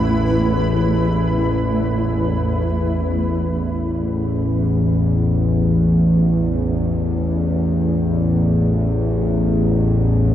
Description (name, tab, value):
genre	dark ambient drone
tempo	free time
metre	none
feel	none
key	unclear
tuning	A4 = 444 Hz
part	granular cloud pad	sustained chords	0.0-2.4 s	A3 to B5	-23 LUFS	equal	built-in reverb
part	bowed-like drone	drone	0.0-10.3 s	A1 to E2	-16 LUFS	equal	built-in reverb
room	wet huge ambient reverb, RT60 7.5 s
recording	dark, warm production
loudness	-16 LUFS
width	side -11 dB against mid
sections	0.0-2.4 A section; 2.4-10.3 B section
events	none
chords	0.0 Asus2; 2.4 A5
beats	free time